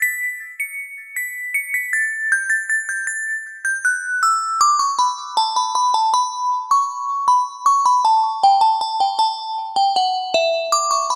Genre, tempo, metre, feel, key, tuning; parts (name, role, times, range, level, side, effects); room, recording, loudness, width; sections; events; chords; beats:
hip hop; 157 BPM; 4/4; half-time; B minor; A4 = 442 Hz
glassy synth bell; solo; 0.0-11.2 s; E5 to C#7; -18 LUFS; equal; chorus, phaser
light reverb, digital ambience; dark, warm production; -18 LUFS; mono
0.0-4.6 A section; 4.6-11.2 B section
| 0.02 0.40 0.79 1.17 | 1.55 1.93 2.31 2.70 | 3.08 3.46 3.84 4.22 | 4.61 4.99 5.37 5.75 | 6.14 6.52 6.90 7.28 | 7.66 8.05 8.43 8.81 | 9.19 9.57 9.96 10.34 | 10.72 11.10